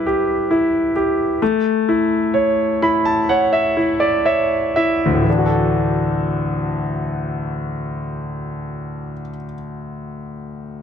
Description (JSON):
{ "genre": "pop", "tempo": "60-67 BPM", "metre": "4/4", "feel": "straight", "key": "D major", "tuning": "A4 = 440 Hz", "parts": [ { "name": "clear concert grand piano", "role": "accompaniment", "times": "0.0-10.8 s", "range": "D2 to B5", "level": "-17 LUFS", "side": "equal", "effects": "none" } ], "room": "moderate scoring stage reverb, RT60 2.0 s", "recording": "dark, warm production", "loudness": "-16 LUFS", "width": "side -8 dB against mid", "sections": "0.0-5.3 A section; 5.3-9.2 B section", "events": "slowing down 0.0-5.3; grand piano fill 2.3-5.3", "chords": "0.0 Em/G; 1.4 A; 5.3 Dadd9", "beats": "0.50 | 1.41 2.34 3.29 4.28 | 5.27 6.27 7.26 8.25" }